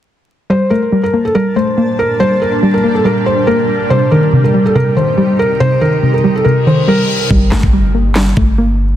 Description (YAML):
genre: hip hop, trap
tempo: 141 BPM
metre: 4/4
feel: half-time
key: G minor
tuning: A4 = 439 Hz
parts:
  - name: felt-muted upright piano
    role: melody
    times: 0.5-7.3 s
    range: A4 to C5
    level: -15 LUFS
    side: right 1 dB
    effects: digital delay
  - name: soft round pluck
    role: accompaniment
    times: 0.5-9.0 s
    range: C3 to Bb3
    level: -13 LUFS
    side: left 1 dB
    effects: chorus, low-pass filter
  - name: granular cloud pad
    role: sustained chords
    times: 1.1-7.3 s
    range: Bb2 to A5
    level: -19 LUFS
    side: equal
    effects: built-in reverb
  - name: reverse cymbal and impact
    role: sound effects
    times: 6.6-9.0 s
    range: none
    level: -23 LUFS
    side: left 2 dB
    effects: none
  - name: clean 808-style bass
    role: bass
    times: 7.3-9.0 s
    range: G1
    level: -14 LUFS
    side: equal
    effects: none
  - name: trap drum kit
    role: drums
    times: 7.3-8.5 s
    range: handclaps, kick drum, snare drum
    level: -13 LUFS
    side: equal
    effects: none
room: light reverb, digital ambience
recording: dense, heavily limited modern master, vinyl crackle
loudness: -10 LUFS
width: side -11 dB against mid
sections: 0.5-7.3 A section; 7.3-9.0 B section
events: reverse cymbal 6.6-7.3; hi-hats muted 7.3-9.0; impact 7.3-9.0; filter sweep on synth pluck 7.3-9.0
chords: 0.5 Gmadd9; 3.9 Cm; 7.3 Gmadd9